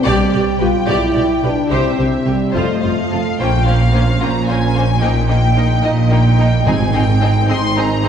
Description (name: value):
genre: cinematic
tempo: 73 BPM (dotted quarters)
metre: 6/8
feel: straight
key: unclear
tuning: A4 = 442 Hz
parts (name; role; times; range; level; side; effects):
- warm symphonic violin section; melody; 0.0-8.1 s; C5 to C6; -22 LUFS; left 4 dB; none
- mellow French horn section; sustained chords; 0.0-8.1 s; G3 to C5; -20 LUFS; equal; none
- rich symphonic violin section; second line; 0.1-8.1 s; Eb4 to Eb5; -24 LUFS; left 2 dB; none
- clear symphonic viola section; accompaniment; 0.1-8.1 s; Bb3 to G4; -23 LUFS; right 1 dB; none
- rich symphonic cello section; bass; 0.1-8.1 s; F2 to C3; -18 LUFS; right 2 dB; none
- rich symphonic double bass section; bass; 0.1-8.1 s; F1 to C2; -19 LUFS; right 1 dB; none
- timpani; percussion; 6.7-7.4 s; Ab2; -21 LUFS; right 1 dB; none
room: wet concert hall reverb, RT60 1.8 s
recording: heard from further back in the room, nothing above 10.4 kHz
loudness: -12 LUFS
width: side -8 dB against mid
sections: 0.0-3.4 A section; 3.4-8.1 B section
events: none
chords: 0.1 G/B; 1.7 C; 2.5 F7; 3.4 Bbmadd9; 5.0 Eb/Bb; 6.7 Ab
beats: | 0.07 0.89 | 1.71 2.55 | 3.39 4.21 | 5.03 5.85 | 6.67 7.49